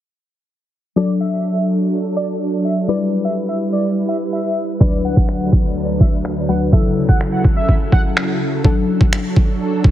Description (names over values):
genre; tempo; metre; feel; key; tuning
dance-pop; 125 BPM; 4/4; straight; D major; A4 = 440 Hz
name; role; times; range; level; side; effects
octave-doubled lead; melody; 1.0-8.0 s; D5 to F#5; -25 LUFS; right 1 dB; chorus, phaser, sidechain pumping, dub echo
soft round pluck; accompaniment; 1.0-9.9 s; D2 to B4; -20 LUFS; left 4 dB; chorus, sidechain pumping
soft string machine; sustained chords; 1.3-9.9 s; D2 to B4; -20 LUFS; right 1 dB; ensemble chorus, sidechain pumping
boom bap sampler-style drum kit; drums; 4.8-9.9 s; finger snaps, kick drum; -14 LUFS; equal; overdrive
room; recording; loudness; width
light reverb; heavily compressed radio sound, low-pass filter; -14 LUFS; side -12 dB against mid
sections
1.0-8.6 A section; 8.6-9.9 B section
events
filter sweep 1.0-8.6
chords
1.0 D; 2.9 Em; 4.8 Bm/D; 6.7 F#m7/C#; 8.6 D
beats
| 0.97 1.45 1.93 2.41 | 2.89 3.37 3.85 4.33 | 4.81 5.29 5.77 6.25 | 6.73 7.21 7.69 8.17 | 8.65 9.13 9.61